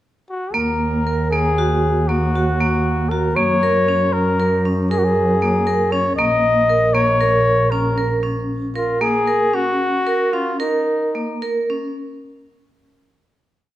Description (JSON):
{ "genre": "contemporary instrumental, chamber music in an uneven meter", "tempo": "233 BPM (eighths)", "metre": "11/8", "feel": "straight", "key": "unclear", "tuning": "A4 = 440 Hz", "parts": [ { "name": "warm flugelhorn", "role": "melody", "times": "0.3-11.4 s", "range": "Eb4 to Eb5", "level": "-19 LUFS", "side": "left 2 dB", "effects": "none" }, { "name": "vibraphone with hard mallets", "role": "arpeggios", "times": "0.5-11.9 s", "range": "Bb3 to Bb4", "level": "-20 LUFS", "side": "right 2 dB", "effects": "none" }, { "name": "warm double bass", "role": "bass", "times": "0.5-9.0 s", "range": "Bb1 to Gb2", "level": "-21 LUFS", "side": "equal", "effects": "none" } ], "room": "wet recital hall reverb, RT60 1.6 s", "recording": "none", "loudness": "-16 LUFS", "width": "side -14 dB against mid", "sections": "0.0-0.5 pickup bar; 0.5-12.0 A section", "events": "slowing down 7.7-12.0", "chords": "0.0 N.C.; 0.5 Ebm; 3.4 Gb; 6.2 Bbm" }